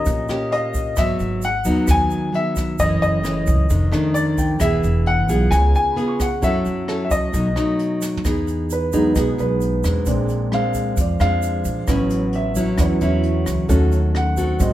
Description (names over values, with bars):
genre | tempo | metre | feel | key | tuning
bossa nova | 132 BPM | 4/4 | straight | E major | A4 = 438 Hz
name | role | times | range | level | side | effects
clear baby grand piano | melody | 0.0-8.0 s | D5 to G#5 | -23 LUFS | left 2 dB | plate reverb
nylon-string guitar | accompaniment | 0.0-14.7 s | F2 to A4 | -22 LUFS | equal | none
warm concert grand piano | accompaniment | 0.0-1.1, 4.4-14.7 s | F#3 to C#6 | -24 LUFS | right 1 dB | none
upright bass | bass | 0.0-14.7 s | E1 to F#2 | -21 LUFS | equal | none
jazz brush drum kit | drums | 0.1-14.7 s | hi-hat, kick drum, rim click, snare drum, toms | -25 LUFS | equal | none
egg shaker | percussion | 0.1-14.7 s | none | -37 LUFS | right 7 dB | none
room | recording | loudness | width
moderate studio reverb, RT60 0.7 s | heard from further back in the room | -17 LUFS | side -13 dB against mid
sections
0.0-8.2 A section; 8.2-14.7 B section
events
drum fill 8.0; grand piano solo 8.2-14.7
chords
0.0 D#7; 1.0 G#m7; 2.8 F#m7; 3.7 F13; 4.6 E; 5.5 C#7; 6.4 F#m7; 7.3 B7; 8.2 Emaj7; 10.1 A#9; 11.9 A6; 13.7 D#m7b5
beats
0.07 0.52 | 0.98 1.43 1.89 2.34 | 2.80 3.25 3.71 4.16 | 4.62 5.07 5.52 5.98 | 6.43 6.89 7.34 7.80 | 8.25 8.70 9.16 9.61 | 10.07 10.52 10.97 11.43 | 11.88 12.33 12.79 13.24 | 13.69 14.15 14.60